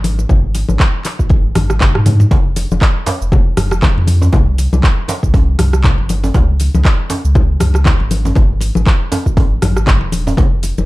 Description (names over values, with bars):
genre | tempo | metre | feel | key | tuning
afro house | 119 BPM | 4/4 | swing 57% on 16ths | unclear | A4 = 441 Hz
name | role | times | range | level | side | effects
warm sub bass | bass | 0.0-10.9 s | Eb1 to Ab2 | -14 LUFS | equal | tube saturation, sidechain pumping
afro-pop drum kit | drums | 0.0-10.9 s | handclaps, hi-hat, rim click, shaker, toms | -19 LUFS | right 1 dB | studio ambience
congas | percussion | 0.0-10.9 s | none | -20 LUFS | left 3 dB | none
electronic kick drum | drums | 0.3-10.5 s | none | -12 LUFS | equal | overdrive, studio ambience
djembe | percussion | 2.3-10.5 s | none | -20 LUFS | right 2 dB | none
room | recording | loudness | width
digital ambience | dark, warm production | -11 LUFS | side -19 dB against mid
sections
0.0-10.9 A section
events
drum fill 1.6-2.3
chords
none